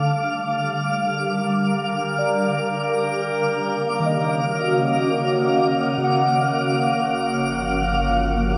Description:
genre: ambient.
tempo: 61 BPM.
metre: 4/4.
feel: straight.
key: unclear.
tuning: A4 = 440 Hz.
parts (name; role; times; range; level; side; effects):
shimmering ambient pad; sustained chords; 0.0-8.6 s; C#3 to F5; -24 LUFS; equal; chorus, built-in reverb, phaser.
twinkling granular texture; texture; 0.0-8.6 s; F5 to D6; -26 LUFS; equal; built-in reverb.
muted felt-like synth keys; arpeggios; 0.2-8.6 s; C#3 to F#5; -29 LUFS; equal; chorus, delay.
round analog bass; bass; 7.1-8.6 s; G1; -29 LUFS; equal; none.
room: wet shimmer reverb, RT60 8.4 s.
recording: none.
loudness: -21 LUFS.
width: mono.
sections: 0.0-8.6 A section.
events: none.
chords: 0.0 Bb6; 3.1 F#; 7.1 Gm7.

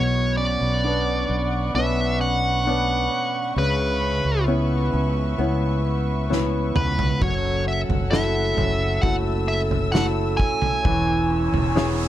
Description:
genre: pop ballad.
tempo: 66 BPM.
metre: 4/4.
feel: straight.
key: F# minor.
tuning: A4 = 438 Hz.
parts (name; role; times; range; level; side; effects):
dark smooth lead guitar; melody; 0.0-12.1 s; B4 to G#5; -25 LUFS; right 1 dB; overdrive.
clear baby grand piano; accompaniment; 0.0-12.1 s; B2 to A4; -26 LUFS; left 3 dB; none.
warm studio string section; sustained chords; 0.0-12.1 s; A4 to E6; -31 LUFS; equal; none.
fingerpicked plugged-in steel-string acoustic guitar; arpeggios; 0.0-12.1 s; F#2 to D4; -30 LUFS; right 5 dB; none.
fretless electric bass; bass; 0.0-12.1 s; E1 to C#2; -24 LUFS; equal; none.
loose indie drum kit; drums; 6.3-12.0 s; kick drum, snare drum, toms; -25 LUFS; equal; none.
noise sweep; sound effects; 11.2-12.1 s; none; -34 LUFS; right 5 dB; none.
room: studio reverb.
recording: dark, warm production.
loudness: -19 LUFS.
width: side -12 dB against mid.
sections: 0.0-12.1 A section.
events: drum fill 6.3-7.2; noise sweep 11.2-12.1.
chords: 0.0 Bmadd9; 3.6 C#m7; 7.2 F#m7; 10.8 E6.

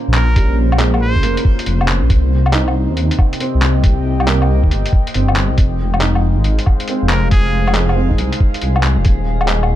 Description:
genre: future garage.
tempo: 138 BPM.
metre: 4/4.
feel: swing 66% on 16ths.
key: F minor.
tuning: A4 = 440 Hz.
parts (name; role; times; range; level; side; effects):
felt-muted upright piano; accompaniment; 0.0-9.8 s; G3 to Eb4; -25 LUFS; right 4 dB; sidechain pumping, tape echo.
warbly tape-like pad; sustained chords; 0.0-9.8 s; Bb2 to G5; -22 LUFS; left 1 dB; chorus, built-in reverb, phaser, sidechain pumping.
trumpet with straight mute; melody; 0.1-1.4, 7.1-7.8 s; Ab4 to C5; -26 LUFS; right 1 dB; tape echo.
dark detuned saw bass; bass; 0.1-9.8 s; Eb1 to Eb2; -15 LUFS; equal; sidechain pumping.
lo-fi sampler-style drum kit; drums; 0.1-9.7 s; handclaps, hi-hat, woodblock; -20 LUFS; left 1 dB; none.
electronic kick drum; drums; 0.4-9.2 s; none; -13 LUFS; equal; none.
drifting glass-harmonics texture; texture; 6.2-9.8 s; Ab4; -30 LUFS; equal; chorus, built-in reverb.
room: little or no reverb.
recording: dark, warm production.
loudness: -12 LUFS.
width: side -13 dB against mid.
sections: 0.0-9.8 A section.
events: none.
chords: 0.0 Bbm7; 2.1 Cm; 5.6 Fm; 9.1 Ebsus4.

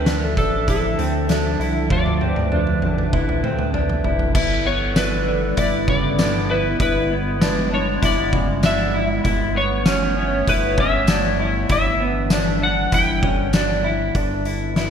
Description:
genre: dream pop.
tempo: 98 BPM.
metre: 4/4.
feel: straight.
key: G lydian from 4.4 s.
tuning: A4 = 440 Hz.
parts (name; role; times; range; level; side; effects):
electric slide guitar; melody; 0.0-13.5 s; A4 to G5; -24 LUFS; left 1 dB; analog chorus, ping-pong delay.
warbly tape-like pad; sustained chords; 0.0-14.9 s; D3 to E5; -25 LUFS; equal; chorus, built-in reverb.
mellow electric guitar; arpeggios; 0.0-14.9 s; C#3 to F4; -24 LUFS; left 1 dB; lush chorus, ping-pong delay.
chorused synth bass; bass; 0.0-14.9 s; F1 to D2; -25 LUFS; equal; none.
oversized low-tuned drum kit; drums; 0.1-14.9 s; crash cymbal, hi-hat, kick drum, snare drum, tambourine, toms; -22 LUFS; equal; gated reverb.
room: moderate lush hall reverb, RT60 1.7 s, small room ambience.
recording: bright 1980s-style digital production.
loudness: -17 LUFS.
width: side -8 dB against mid.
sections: 0.0-4.4 A section; 4.4-14.1 B section.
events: drum fill 1.9-4.4.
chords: 0.0 Dmadd9; 4.4 G6; 6.8 E7/G; 9.2 Aadd9/G; 11.7 Em7/G; 12.9 G; 14.1 G6.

